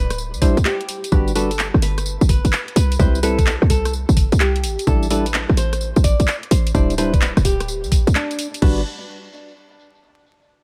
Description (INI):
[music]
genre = UK garage, two-step garage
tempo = 128 BPM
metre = 4/4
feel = swing 66% on 16ths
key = G major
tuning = A4 = 440 Hz
[part]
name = nylon-string guitar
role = melody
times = 0.0-8.8 s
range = D4 to D5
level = -29 LUFS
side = equal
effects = dub echo
[part]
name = short 808-style bass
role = bass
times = 0.0-8.8 s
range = D1 to D2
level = -20 LUFS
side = equal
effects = none
[part]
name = garage drum kit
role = drums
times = 0.1-8.7 s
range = crash cymbal, handclaps, hi-hat, rim click, tambourine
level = -27 LUFS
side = equal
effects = tape echo
[part]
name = percussive organ stab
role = stabs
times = 0.4-8.8 s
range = G3 to C5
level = -26 LUFS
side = equal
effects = chorus, cassette tape, tape echo
[part]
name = electronic kick drum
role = drums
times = 0.4-8.7 s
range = none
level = -20 LUFS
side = equal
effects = none
[sound]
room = digital ambience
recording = echo-heavy mix, vinyl crackle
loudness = -18 LUFS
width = mono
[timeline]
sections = 0.0-8.6 A section; 8.6-10.5 B section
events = none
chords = 0.0 D9sus4; 1.1 Gmaj7; 2.8 Cmaj7; 4.6 A7sus4; 6.7 D9sus4; 8.6 Gmaj7